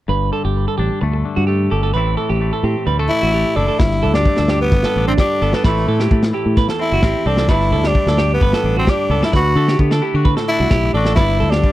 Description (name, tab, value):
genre	highlife guitar band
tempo	130 BPM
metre	4/4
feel	straight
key	G major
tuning	A4 = 439 Hz
part	semi-hollow electric guitar	accompaniment	0.1-11.7 s	E2 to G4	-24 LUFS	left 6 dB	none
part	clean electric guitar	arpeggios	0.1-11.7 s	D4 to B4	-22 LUFS	right 7 dB	tape echo
part	fingered electric bass	bass	0.1-11.6 s	F#1 to D3	-18 LUFS	equal	none
part	growling tenor saxophone	melody	3.1-11.7 s	A3 to F#4	-18 LUFS	equal	none
part	crunchy breakbeat drum kit	drums	3.8-11.7 s	kick drum, snare drum	-17 LUFS	equal	none
room	little or no reverb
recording	dry, close 1970s-style studio recording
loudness	-14 LUFS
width	side -15 dB against mid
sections	0.1-3.8 A section; 3.8-11.7 B section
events	none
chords	0.1 Gsus2; 1.9 Am; 3.8 Gsus2; 5.6 Am; 7.5 Gsus2; 9.3 D; 11.2 Gsus2